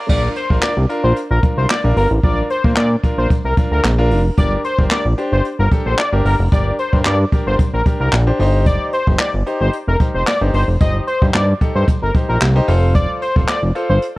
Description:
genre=dance-pop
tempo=112 BPM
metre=4/4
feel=straight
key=Bb major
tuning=A4 = 440 Hz
part: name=clear grand piano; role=accompaniment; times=0.0-14.0 s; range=D4 to C5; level=-23 LUFS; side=equal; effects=sidechain pumping
part: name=octave-doubled lead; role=melody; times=0.1-14.0 s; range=Bb4 to Eb5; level=-21 LUFS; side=left 1 dB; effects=chorus, sidechain pumping
part: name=fat analog bass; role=bass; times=0.1-14.0 s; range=F1 to Bb2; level=-16 LUFS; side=equal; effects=sidechain pumping
part: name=jazz brush drum kit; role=drums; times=0.1-14.2 s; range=crash cymbal, handclaps, hi-hat, kick drum, snare drum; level=-17 LUFS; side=equal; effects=none
room=studio reverb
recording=worn, warbling old tape, cassette tape, warbly pitch drift, high-pass filter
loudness=-13 LUFS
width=side -20 dB against mid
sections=0.1-14.2 A section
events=drop 0.1-14.2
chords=0.1 Bb; 8.4 Cm; 12.7 F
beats=| 0.09 0.63 1.16 1.70 | 2.23 2.77 3.31 3.84 | 4.38 4.91 5.45 5.99 | 6.52 7.06 7.59 8.13 | 8.66 9.20 9.73 10.27 | 10.81 11.34 11.88 12.41 | 12.95 13.48 14.02

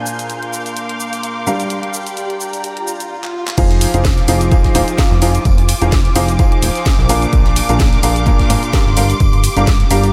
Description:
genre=piano house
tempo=128 BPM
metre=4/4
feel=swing 55% on 16ths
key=F dorian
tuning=A4 = 439 Hz
part: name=analog string pad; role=sustained chords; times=0.0-10.1 s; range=D6 to G6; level=-28 LUFS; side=equal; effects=ensemble chorus, sidechain pumping
part: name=clear upright piano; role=riff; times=0.0-10.0 s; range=Bb2 to F5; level=-21 LUFS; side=equal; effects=sidechain pumping, analog delay
part: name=muted studio string section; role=texture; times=0.0-10.1 s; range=F4 to D6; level=-28 LUFS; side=equal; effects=sidechain pumping
part: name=house drum kit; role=drums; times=0.1-10.1 s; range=crash cymbal, handclaps, hi-hat, shaker, snare drum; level=-25 LUFS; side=equal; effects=none
part: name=swell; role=sound effects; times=2.8-3.6 s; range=none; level=-30 LUFS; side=equal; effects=none
part: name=plucky analog bass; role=bass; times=3.6-10.1 s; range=Eb1 to Bb1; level=-18 LUFS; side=equal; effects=sidechain pumping
part: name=electronic kick drum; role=drums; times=3.6-9.8 s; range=none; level=-16 LUFS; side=equal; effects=none
part: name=modern studio drum kit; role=drums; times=3.6-10.1 s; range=hi-hat, snare drum, tambourine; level=-36 LUFS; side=equal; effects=none
room=light reverb, studio reverb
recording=none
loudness=-15 LUFS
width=mono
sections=0.0-3.6 A section; 3.6-10.1 B section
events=filter sweep on analog synth pad 0.0-3.6; swell 2.8-3.6; drum fill 3.2-3.6; drop 3.6-10.1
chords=0.0 Bb7; 1.5 Gm7; 3.6 Fm7; 7.1 Bb7; 9.0 Gm7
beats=0.30 0.77 1.23 | 1.70 2.17 2.64 3.11 | 3.58 4.05 4.51 4.98 | 5.45 5.92 6.39 6.86 | 7.33 7.80 8.27 8.73 | 9.20 9.67

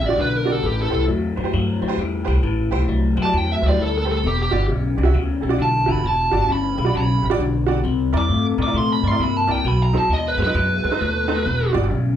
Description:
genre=electric blues shuffle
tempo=133 BPM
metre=4/4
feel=swing 64% on 8ths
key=E minor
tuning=A4 = 440 Hz
part: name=smooth overdriven lead guitar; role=melody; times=0.0-11.7 s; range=G4 to D6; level=-22 LUFS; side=right 1 dB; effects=none
part: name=honky-tonk upright piano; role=accompaniment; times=0.0-11.8 s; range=D#4 to E5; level=-25 LUFS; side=right 5 dB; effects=none
part: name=electric guitar through a small old amp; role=riff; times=0.0-12.2 s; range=E2 to Bb3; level=-24 LUFS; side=left 5 dB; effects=phaser
part: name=upright bass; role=bass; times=0.0-12.2 s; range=E1 to Bb2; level=-21 LUFS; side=equal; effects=none
room=moderate large studio reverb, RT60 0.8 s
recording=band playing live in one room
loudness=-17 LUFS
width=side -10 dB against mid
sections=0.0-12.2 A section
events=lead electric guitar solo 0.0-12.2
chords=0.0 Em7; 0.6 Am7; 4.2 Em7; 7.8 C7; 9.7 B7b9; 11.5 Em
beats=0.18 | 0.63 1.08 1.53 1.98 | 2.43 2.88 3.33 3.78 | 4.24 4.69 5.14 5.59 | 6.04 6.49 6.94 7.39 | 7.84 8.30 8.75 9.20 | 9.65 10.10 10.55 11.00 | 11.46 11.91

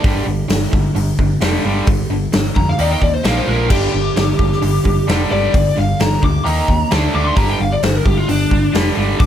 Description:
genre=hard rock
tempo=131 BPM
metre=4/4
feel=straight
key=G minor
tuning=A4 = 442 Hz
part: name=crunchy overdriven guitar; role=riff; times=0.0-9.3 s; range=G2 to Eb4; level=-21 LUFS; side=right 9 dB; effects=spring reverb
part: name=overdriven electric guitar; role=riff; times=0.0-9.3 s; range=G2 to Eb4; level=-22 LUFS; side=left 8 dB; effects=phaser
part: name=hollow-body short-scale fingered electric bass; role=bass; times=0.0-9.3 s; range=F1 to F2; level=-19 LUFS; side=equal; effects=none
part: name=big rock drum kit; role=drums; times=0.0-9.3 s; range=crash cymbal, hi-hat, kick drum, snare drum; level=-18 LUFS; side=equal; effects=none
part: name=lead guitar through a small cranked amp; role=melody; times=2.6-9.3 s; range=D4 to D6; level=-20 LUFS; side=left 2 dB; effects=overdrive
room=little or no reverb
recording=none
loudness=-13 LUFS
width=side -10 dB against mid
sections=0.0-9.3 A section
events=lead electric guitar solo 0.0-9.3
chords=0.0 G5; 2.8 Eb5; 3.2 Bb5; 3.7 G5; 6.5 Eb5; 6.9 D5; 7.4 G5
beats=| 0.04 0.50 0.96 1.42 | 1.87 2.33 2.79 3.25 | 3.71 4.17 4.62 5.08 | 5.54 6.00 6.46 6.91 | 7.37 7.83 8.28 8.74 | 9.20

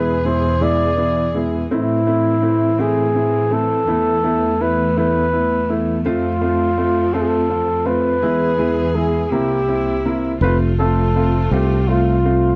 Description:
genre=six-eight pop ballad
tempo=55 BPM (dotted quarters)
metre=6/8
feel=straight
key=unclear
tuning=A4 = 440 Hz
part: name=mellow flugelhorn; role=melody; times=0.0-12.6 s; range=E4 to D5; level=-21 LUFS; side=equal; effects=none
part: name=warm baby grand piano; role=accompaniment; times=0.0-12.5 s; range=G#3 to F4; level=-23 LUFS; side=equal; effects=none
part: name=warm studio string section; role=sustained chords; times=0.0-12.6 s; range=C2 to G#4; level=-25 LUFS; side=equal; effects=none
part: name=fretless electric bass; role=bass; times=10.4-12.6 s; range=F1 to C2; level=-19 LUFS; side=equal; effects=none
room=light reverb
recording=dry, close 1970s-style studio recording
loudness=-18 LUFS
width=mono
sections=0.0-10.4 A section; 10.4-12.6 B section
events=none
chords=0.0 E; 1.7 Am; 3.9 Esus4; 6.1 F; 8.2 E; 9.3 C7; 10.4 F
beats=0.61 | 1.70 2.79 | 3.88 4.97 | 6.05 7.14 | 8.22 9.31 | 10.42 11.52

